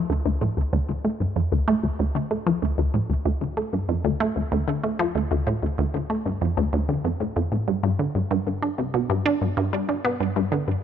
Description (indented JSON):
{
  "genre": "ambient",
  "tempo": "95 BPM",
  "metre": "4/4",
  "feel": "straight",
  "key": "D dorian",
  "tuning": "A4 = 441 Hz",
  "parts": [
    { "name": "resonant blip pluck", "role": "solo", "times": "0.0-10.7 s", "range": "D2 to D4", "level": "-22 LUFS", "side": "equal", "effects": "chorus, tape echo" }
  ],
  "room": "light reverb",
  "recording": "nothing above 7.6 kHz",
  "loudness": "-22 LUFS",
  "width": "side -9 dB against mid",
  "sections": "0.0-10.8 A section",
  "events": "none",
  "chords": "none",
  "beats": "| 0.10 0.73 1.36 1.99 | 2.62 3.26 3.89 4.52 | 5.15 5.78 6.41 7.05 | 7.68 8.31 8.94 9.57 | 10.20"
}